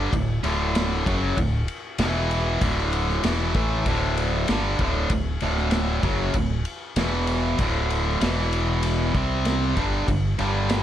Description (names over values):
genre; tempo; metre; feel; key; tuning
classic rock; 96 BPM; 4/4; straight; D mixolydian; A4 = 440 Hz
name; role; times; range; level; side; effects
overdriven electric guitar; riff; 0.0-10.8 s; D2 to C4; -24 LUFS; equal; none
modern bright fingered electric bass; bass; 0.0-10.8 s; D1 to C2; -26 LUFS; equal; none
vintage drum kit; drums; 0.1-10.8 s; kick drum, ride cymbal, snare drum; -28 LUFS; equal; none
room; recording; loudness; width
light reverb; none; -21 LUFS; side -11 dB against mid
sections
0.0-10.8 A section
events
none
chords
0.0 D; 2.0 E5; 2.6 D; 7.0 E5; 7.6 D5; 8.2 E5; 9.1 C5; 9.8 G5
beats
| 0.13 0.75 1.37 2.00 | 2.62 3.24 3.86 4.48 | 5.10 5.73 6.35 6.97 | 7.59 8.21 8.84 9.46 | 10.08 10.71